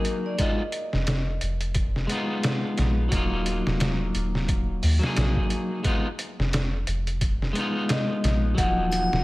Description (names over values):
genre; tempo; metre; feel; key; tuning
trip hop; 88 BPM; 4/4; swing 58% on 16ths; unclear; A4 = 440 Hz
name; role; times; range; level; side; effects
vibraphone with medium mallets; melody; 0.0-1.0, 7.9-9.2 s; Bb4 to Gb5; -30 LUFS; equal; tape echo
electric guitar at the edge of break-up; accompaniment; 0.0-9.2 s; F3 to Ab4; -28 LUFS; left 1 dB; harmonic tremolo, vintage 12-bit sampler grit, tape echo
trip hop sampler-style drum kit; drums; 0.0-9.2 s; hi-hat, kick drum, snare drum; -26 LUFS; equal; studio reverb
soft dub sub bass; bass; 0.9-9.2 s; Eb1 to Eb2; -26 LUFS; equal; tube saturation
triangle; percussion; 8.9-9.1 s; none; -35 LUFS; left 3 dB; none
room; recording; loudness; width
light reverb, digital ambience; vinyl crackle; -23 LUFS; side -19 dB against mid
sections
0.0-9.2 A section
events
none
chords
0.4 Fm7b5; 3.1 Ebmadd9; 5.8 Fm7b5; 8.6 Ebmadd9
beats
| 0.39 1.07 1.76 2.44 | 3.12 3.80 4.48 5.17 | 5.85 6.53 7.21 7.89 | 8.57